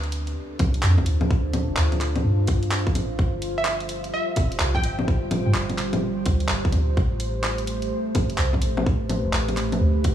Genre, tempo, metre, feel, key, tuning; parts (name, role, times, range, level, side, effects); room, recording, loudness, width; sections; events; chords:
future garage; 127 BPM; 4/4; swing 64% on 16ths; A4 = 440 Hz
deep dark ambient pad; sustained chords; 0.0-10.1 s; G3 to C5; -28 LUFS; right 1 dB; chorus, built-in reverb, sidechain pumping
soft 808-style bass; bass; 0.0-10.1 s; D1 to G2; -24 LUFS; equal; sidechain pumping
garage drum kit; drums; 0.0-10.1 s; bongos, handclaps, hi-hat; -28 LUFS; left 1 dB; overdrive
electronic kick drum; drums; 0.6-10.1 s; -22 LUFS; equal; overdrive
glassy wavetable pluck; melody; 3.6-5.2 s; E5 to G5; -30 LUFS; right 2 dB; chorus, cassette tape, analog delay
light reverb, digital ambience; studio reverb; -21 LUFS; side -10 dB against mid
0.0-10.1 A section
0.0 Dm7; 3.2 G7sus4; 7.0 Am9